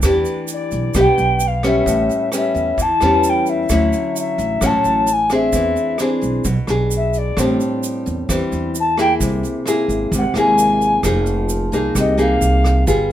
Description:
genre	bossa nova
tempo	131 BPM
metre	4/4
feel	straight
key	A minor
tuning	A4 = 441 Hz
part	nylon-string guitar	accompaniment	0.0-13.1 s	A2 to G#4	-19 LUFS	left 1 dB	none
part	upright bass	bass	0.0-13.1 s	F1 to E2	-20 LUFS	right 1 dB	none
part	vintage brush drum kit	drums	0.0-13.0 s	hi-hat, kick drum, rim click	-26 LUFS	right 1 dB	none
part	tube shaker	percussion	0.0-13.1 s	none	-30 LUFS	right 7 dB	none
part	bright reedy alto ocarina	melody	0.5-12.8 s	D5 to A5	-18 LUFS	left 1 dB	none
room	light reverb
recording	minimal, uncompressed stereo recording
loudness	-15 LUFS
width	side -11 dB against mid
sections	0.0-11.0 A section; 11.0-13.1 A section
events	ocarina solo 0.0-13.1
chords	0.0 Em7; 1.9 A9; 3.7 Dmaj9; 5.5 E7b13; 7.4 Am7; 9.2 Caug7; 11.0 Fm7

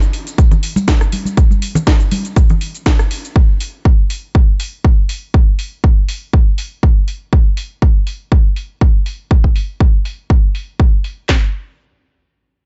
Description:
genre	house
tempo	121 BPM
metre	4/4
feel	swing 54% on 16ths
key	none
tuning	none
part	house drum kit	drums	0.0-11.1 s	hi-hat, rim click, shaker, snare drum	-26 LUFS	equal	sidechain pumping on hats, low-pass filter on hats, sidechain pumping on perc, low-pass filter on perc, low-pass filter on snare
part	tambourine and congas	percussion	0.0-3.3 s	none	-22 LUFS	equal	sidechain pumping on perc, low-pass filter on perc
part	house drum kit	drums	0.4-11.4 s	handclaps, kick drum, snare drum	-13 LUFS	equal	none
room	little or no reverb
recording	nothing above 7.8 kHz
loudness	-14 LUFS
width	mono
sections	0.0-11.3 A section; 11.3-12.7 B section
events	filter sweep on drum 0.0-11.3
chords	none

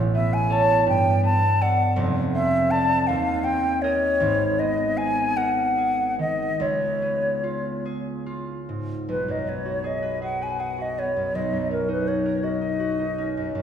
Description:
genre	classical, impressionist duo for flute and harp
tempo	48-56 BPM (dotted quarters)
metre	6/8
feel	rubato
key	unclear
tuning	A4 = 444 Hz
part	concert harp	accompaniment	0.0-13.6 s	F1 to D#5	-24 LUFS	right 1 dB	none
part	mellow hollow silver concert flute	melody	0.1-13.5 s	A#4 to A5	-23 LUFS	left 2 dB	none
room	wet scoring stage reverb, RT60 1.6 s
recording	heard from further back in the room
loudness	-21 LUFS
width	side -8 dB against mid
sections	0.0-9.1 A section; 9.1-13.6 B section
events	none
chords	0.0 A69; 0.9 Gadd9; 2.0 F6; 3.1 D#5; 4.2 G#m9; 6.6 C#9; 9.1 B6; 11.4 D#m7/B

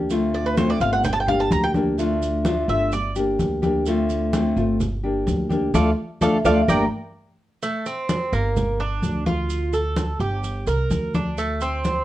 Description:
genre	latin, Cuban son and guajira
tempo	128 BPM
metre	4/4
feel	straight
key	unclear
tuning	A4 = 441 Hz
part	nylon-string guitar	accompaniment	0.0-6.8 s	D3 to G4	-22 LUFS	left 1 dB	none
part	upright bass	bass	0.0-12.0 s	G1 to D2	-26 LUFS	right 1 dB	none
part	congas	percussion	0.1-12.0 s	none	-26 LUFS	equal	none
part	maracas	percussion	0.1-12.0 s	none	-40 LUFS	right 6 dB	none
part	Cuban tres	arpeggios	0.3-12.0 s	A3 to Bb5	-23 LUFS	right 1 dB	none
room	moderate studio reverb, RT60 0.7 s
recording	worn, warbling old tape, cassette tape, warbly pitch drift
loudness	-19 LUFS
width	side -14 dB against mid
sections	0.0-7.6 A section; 7.6-12.0 B section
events	Cuban tres solo 0.0-7.6; band accent 5.7-7.6; drum fill 7.4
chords	0.1 Dm7; 1.0 Gm; 2.0 Dm; 2.9 Gm; 3.9 Dm7; 4.8 Gm; 5.7 Dm; 6.7 Gm; 7.6 Gmadd11; 8.6 Gm; 9.5 Dm; 10.4 Gm; 11.4 D5

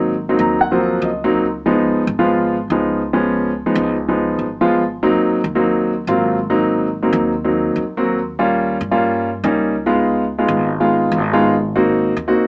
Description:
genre	Afro-Cuban jazz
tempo	143 BPM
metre	4/4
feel	straight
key	Ab mixolydian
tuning	A4 = 440 Hz
part	warm grand piano	accompaniment	0.0-12.5 s	F3 to Bb5	-18 LUFS	equal	none
part	upright bass	bass	0.0-12.5 s	Ab1 to G2	-28 LUFS	equal	none
room	moderate club reverb, RT60 0.6 s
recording	small speaker sound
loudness	-17 LUFS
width	mono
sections	0.0-12.5 A section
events	grand piano fill 0.2-1.4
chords	0.0 Ab9; 1.4 Db9; 4.8 Ab9; 8.2 Eb9; 9.9 Db9; 11.5 Ab9

